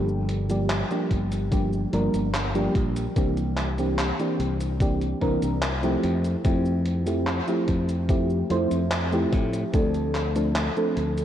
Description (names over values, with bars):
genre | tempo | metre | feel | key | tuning
vaporwave | 73 BPM | 4/4 | straight | unclear | A4 = 439 Hz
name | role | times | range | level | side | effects
mellow FM electric piano | accompaniment | 0.0-11.2 s | E3 to C5 | -25 LUFS | equal | analog chorus, vintage 12-bit sampler grit, ping-pong delay
modern bright fingered electric bass | bass | 0.0-11.2 s | G1 to A2 | -27 LUFS | equal | tube saturation
gated 80s digital drum machine | drums | 0.1-11.2 s | cabasa, handclaps, hi-hat | -32 LUFS | equal | gated reverb, overdrive
electronic kick drum | drums | 1.1-9.9 s | none | -25 LUFS | equal | overdrive
room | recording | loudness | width
wet lush hall reverb, RT60 2.8 s | dreamy mix soaked in reverb, cassette tape | -22 LUFS | side -10 dB against mid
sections
0.0-11.2 A section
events
none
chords
0.0 Gm7; 3.2 C9; 6.0 Fmaj9; 9.7 Dm7